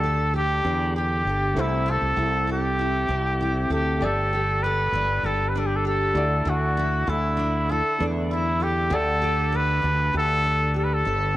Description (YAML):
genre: acoustic pop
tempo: 98 BPM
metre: 4/4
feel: straight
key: unclear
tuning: A4 = 440 Hz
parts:
  - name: breathy trumpet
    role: melody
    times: 0.0-11.4 s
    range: E4 to B4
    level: -24 LUFS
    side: equal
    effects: cassette tape, tape echo
  - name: clear concert grand piano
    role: accompaniment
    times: 0.0-11.4 s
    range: A3 to D5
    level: -35 LUFS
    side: left 1 dB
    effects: cassette tape
  - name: picked steel-string acoustic guitar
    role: accompaniment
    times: 0.0-11.4 s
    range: C3 to A4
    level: -29 LUFS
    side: equal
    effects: double-tracked left and right, cassette tape
  - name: fretless electric bass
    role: bass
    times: 0.0-11.3 s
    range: G1 to E2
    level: -26 LUFS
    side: equal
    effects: none
room: light reverb, studio reverb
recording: home recording on cassette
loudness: -21 LUFS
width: side -15 dB against mid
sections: 0.0-4.0 A section; 4.0-11.4 B section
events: none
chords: 0.0 Gsus2/D; 1.6 C6; 4.0 Gsus2; 6.2 Dsus2; 8.9 Gsus2/D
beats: 0.33 0.95 | 1.56 2.17 2.79 3.40 | 4.01 4.62 5.24 5.85 | 6.46 7.08 7.69 8.30 | 8.91 9.53 10.14 10.76